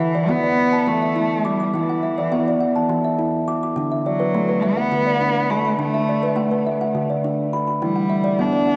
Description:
world meditative, meditative tuned percussion; 207 BPM (eighths); 7/8; straight; D major pentatonic; A4 = 438 Hz
warm cello; melody; 0.0-8.8 s; E3 to D4; -24 LUFS; equal; diffuse ambient delay
kalimba; arpeggios; 0.0-8.8 s; D3 to D6; -22 LUFS; equal
wet recital hall reverb, RT60 1.6 s, small room ambience; worn, warbling old tape, cassette tape, warbly pitch drift; -20 LUFS; mono
0.0-8.8 A section
0.0 E5; 3.8 D; 7.8 Em

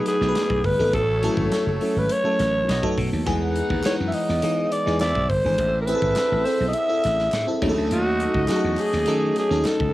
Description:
polished 1980s jazz-funk pop; 103 BPM; 4/4; straight; E major; A4 = 440 Hz
breathy alto saxophone; melody; 0.0-9.9 s; F#4 to E5; -23 LUFS; equal; plate reverb
warm horn section; second line; 0.0-9.9 s; F#3 to F#5; -33 LUFS; equal; cassette tape, plate reverb, analog delay
FM electric piano with soft pad layer; accompaniment; 0.0-9.9 s; E3 to B4; -25 LUFS; left 1 dB; phaser, wide subtle chorus, cassette tape, plate reverb
modern studio drum kit; drums; 0.1-9.9 s; crash cymbal, hi-hat, kick drum, snare drum; -31 LUFS; equal; cassette tape
slap bass; bass; 0.2-9.9 s; F#1 to E3; -25 LUFS; equal
group handclap; percussion; 3.8-9.8 s; -41 LUFS; right 2 dB
moderate small room reverb, RT60 0.5 s; home recording on cassette; -19 LUFS; side -16 dB against mid
0.0-9.9 A section
0.0 B7; 0.9 A6; 2.7 B7; 3.3 Emaj7; 5.0 E7; 5.6 Am; 7.6 D#m7b5

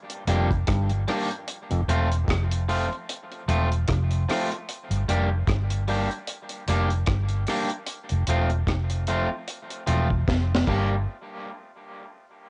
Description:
dub reggae; 75 BPM; 4/4; swing 58% on 16ths; G dorian; A4 = 441 Hz
deep reggae drum kit; drums; 0.1-10.9 s; crash cymbal, hi-hat, kick drum, rim click, snare drum; -31 LUFS; equal; cassette tape
electric guitar at the edge of break-up; accompaniment; 0.3-10.9 s; F3 to G4; -31 LUFS; equal; dub echo
overdriven clav; riff; 0.3-1.8 s; F2 to G2; -37 LUFS; equal; auto-wah, dub echo
vintage muted fingered electric bass; bass; 0.3-11.1 s; E1 to G1; -26 LUFS; equal
light reverb; home recording on cassette, nothing above 10.4 kHz; -25 LUFS; mono
0.0-11.1 A section; 11.1-12.5 B section
drum fill 10.3-11.1
0.0 Gm; 1.5 F; 4.7 Gm; 7.9 F; 10.7 Gm; 11.1 N.C.

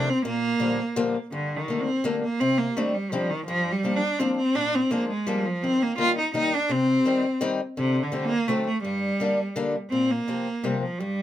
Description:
musette waltz; 168 BPM; 3/4; straight; G minor; A4 = 442 Hz
clear cello; melody; 0.0-11.2 s; C3 to F4; -24 LUFS; equal
picked acoustic archtop guitar; accompaniment; 0.0-11.2 s; G2 to Eb4; -28 LUFS; left 3 dB
moderate studio ambience, RT60 0.5 s; -22 LUFS; side -12 dB against mid
0.0-1.3 A section; 1.3-9.9 B section; 9.9-11.2 A section
0.3 Bb6; 1.3 Gmadd9; 2.4 Cmadd9; 3.5 Gm7; 4.5 Bb7; 5.6 Eb; 6.7 Cm; 7.8 D7sus4; 8.5 D7; 8.8 Gm; 9.9 Bbsus2

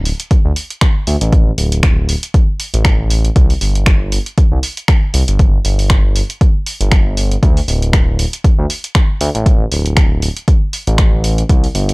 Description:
deep house; 118 BPM; 4/4; swing 56% on 16ths; A4 = 440 Hz
smooth synth bass; bass; 0.0-11.9 s; D1 to D2; -15 LUFS; equal; sidechain pumping
punchy analog drum machine; drums; 0.1-11.9 s; finger snaps, hi-hat; -20 LUFS; equal
electronic kick drum; drums; 0.3-11.6 s; -11 LUFS; equal
little or no reverb; dry, gritty hardware recording; -11 LUFS; side -26 dB against mid
0.0-11.9 A section

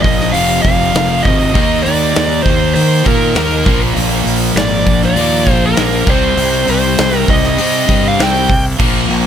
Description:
hard rock; 99 BPM; 4/4; straight; C minor; A4 = 439 Hz
bluesy overdriven lead guitar; melody; 0.0-8.6 s; Bb4 to G5; -16 LUFS; equal; distortion
overdriven semi-hollow guitar; riff; 0.0-9.3 s; F2 to Eb4; -18 LUFS; left 13 dB
tight distorted guitar; riff; 0.0-9.3 s; F2 to Eb4; -18 LUFS; right 15 dB; distortion
fuzz fingered electric bass; bass; 0.0-9.3 s; F1 to Eb3; -18 LUFS; equal; overdrive
big rock drum kit; drums; 0.0-9.2 s; crash cymbal, hi-hat, kick drum, snare drum; -16 LUFS; equal
little or no reverb; -10 LUFS; side -9 dB against mid
0.0-9.3 A section
0.3 Fm; 1.6 Eb5; 3.7 Bb; 6.1 Cm

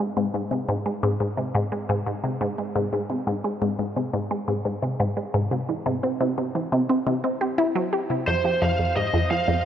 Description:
ambient; 87 BPM; 4/4; straight; A4 = 440 Hz
resonant blip pluck; riff; 0.0-9.6 s; F2 to G4; -23 LUFS; equal; phaser, analog delay
lead guitar through a small cranked amp; melody; 8.3-9.6 s; C5 to F5; -23 LUFS; right 2 dB; overdrive, analog delay
wet huge ambient reverb, RT60 8.2 s; -22 LUFS; side -9 dB against mid
0.0-8.3 A section; 8.3-9.7 B section
0.0 Ab; 5.5 C; 8.3 F5

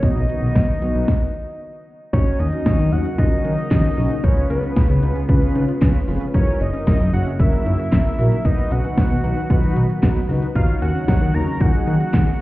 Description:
synth-pop; 114 BPM; 4/4; straight; Eb minor; A4 = 440 Hz
fat analog lead; melody; 0.0-12.4 s; Cb5 to Bb5; -27 LUFS; equal; ping-pong delay
mellow synth brass; accompaniment; 0.0-12.3 s; B3 to Db5; -28 LUFS; right 1 dB; chorus
soft string machine; sustained chords; 0.0-12.4 s; Db3 to F#4; -26 LUFS; left 1 dB; ensemble chorus
fat analog bass; bass; 0.0-12.2 s; F1 to Eb3; -20 LUFS; equal
pop drum kit; drums; 0.0-12.4 s; handclaps, hi-hat, kick drum, snare drum; -17 LUFS; equal; overdrive
analog pluck; arpeggios; 2.1-12.3 s; Db4 to Ab4; -33 LUFS; left 4 dB
little or no reverb; heard muffled through a wall, stone room reverb, EQ; -16 LUFS; side -17 dB against mid
0.0-2.1 A section; 2.1-12.4 B section
stop 1.1-2.1
0.0 B; 2.1 Ebm7; 4.2 Db7; 6.3 Gb7; 8.4 B; 10.6 Ebm7

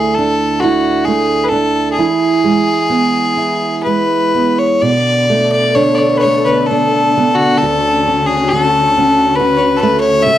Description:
celtic folk, Celtic slow air; 60-70 BPM; 3/4; rubato; A4 = 439 Hz
bright fiddle; melody; 0.0-10.4 s; F#4 to E5; -13 LUFS; left 2 dB; slapback echo
fingerpicked steel-string acoustic guitar; accompaniment; 0.0-10.4 s; D2 to F#4; -15 LUFS; right 4 dB
dark chamber string section; sustained chords; 4.8-10.4 s; C#3 to A4; -19 LUFS; left 5 dB
light reverb; dry, close 1970s-style studio recording; -11 LUFS; side -12 dB against mid
0.0-4.8 A section; 4.8-10.4 B section
0.0 Dsus2; 2.0 E; 4.8 Bm7; 7.6 Dmaj7

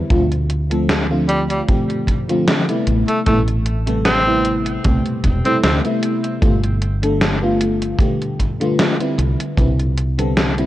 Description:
vaporwave; 76 BPM; 4/4; swing 54% on 16ths; A minor; A4 = 438 Hz
FM electric piano with soft pad layer; accompaniment; 0.0-10.7 s; C3 to A4; -19 LUFS; equal; lush chorus, tape echo
woody fretless electric bass; bass; 0.1-10.7 s; E1 to D2; -19 LUFS; equal; tube saturation, lush chorus
gated 80s digital drum machine; drums; 0.1-10.7 s; hi-hat, snare drum; -20 LUFS; equal; gated reverb, gated reverb snare
kick drum; drums; 0.1-9.7 s; -20 LUFS; equal
edgy tenor saxophone; melody; 1.3-5.8 s; G3 to C4; -22 LUFS; equal; tape echo
light reverb; cassette tape; -15 LUFS; side -14 dB against mid
0.0-10.7 A section
0.1 Dm7; 2.9 Am9; 6.4 G9; 9.2 Cmaj9

